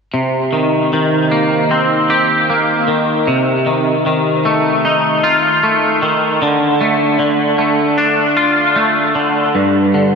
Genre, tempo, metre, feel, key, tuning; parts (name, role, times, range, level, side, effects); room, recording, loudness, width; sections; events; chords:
rock; 76 BPM; 4/4; straight; A4 = 440 Hz
twangy electric guitar; arpeggios; 0.1-10.2 s; G2 to G4; -12 LUFS; equal; analog chorus, diffuse ambient delay
wet lush hall reverb, RT60 3.0 s; dreamy mix soaked in reverb, faint mains hum; -12 LUFS; side -5 dB against mid
0.1-10.2 A section
0.1 Cm7; 3.3 F7/C; 6.4 Dm; 9.5 G5